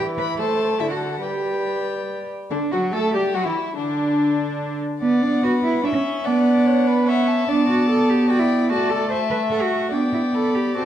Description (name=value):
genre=quick classical-period movement for string quartet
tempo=145 BPM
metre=3/4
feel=rubato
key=G major from 7.5 s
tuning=A4 = 439 Hz
part: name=warm violin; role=melody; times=0.0-10.8 s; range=D4 to B5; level=-29 LUFS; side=left 10 dB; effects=none
part: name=dark violin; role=second line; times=0.0-10.8 s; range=D4 to E5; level=-26 LUFS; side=left 4 dB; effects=none
part: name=rich viola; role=accompaniment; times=0.0-10.8 s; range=D3 to D4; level=-23 LUFS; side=right 1 dB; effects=none
part: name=dark cello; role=bass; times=0.0-10.8 s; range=B3 to C5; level=-22 LUFS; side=right 3 dB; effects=none
room=wet recital hall reverb, RT60 1.6 s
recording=dark, warm production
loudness=-18 LUFS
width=side -10 dB against mid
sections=0.0-2.5 A section; 2.5-10.8 B section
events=none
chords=0.4 Am; 0.8 D; 1.2 G; 2.5 D; 3.8 N.C.; 5.0 Bm; 7.5 G/B; 8.7 D/A; 9.9 G/B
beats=0.39 0.80 | 1.23 1.66 2.09 | 2.51 2.94 3.36 | 3.77 4.19 4.61 | 5.02 5.43 5.84 | 6.25 6.66 7.07 | 7.48 7.89 8.29 | 8.70 9.10 9.51 | 9.92 10.33 10.75